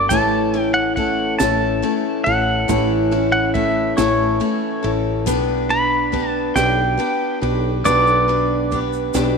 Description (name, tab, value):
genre	acoustic folk duo or small band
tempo	46 BPM (dotted quarters)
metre	6/8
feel	straight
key	unclear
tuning	A4 = 439 Hz
part	pedal steel guitar	melody	0.0-8.8 s	C#5 to B5	-20 LUFS	right 1 dB	none
part	picked steel-string acoustic guitar	accompaniment	0.0-9.4 s	A2 to B4	-21 LUFS	left 10 dB	none
part	clear upright piano	arpeggios	0.0-9.4 s	E3 to A4	-23 LUFS	right 10 dB	slapback echo
part	woody fretless electric bass	bass	0.0-9.4 s	G1 to B1	-24 LUFS	right 1 dB	ensemble chorus
part	compact cocktail drum kit	drums	0.1-9.3 s	kick drum, ride cymbal, snare drum	-30 LUFS	right 6 dB	none
part	tube shaker	percussion	0.1-9.3 s	none	-33 LUFS	right 16 dB	none
room	moderate echo chamber reverb, RT60 1.8 s, studio reverb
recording	1960s-style stereo with parts hard left and right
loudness	-16 LUFS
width	side -5 dB against mid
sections	0.0-9.4 A section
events	none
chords	0.1 A; 5.3 G/B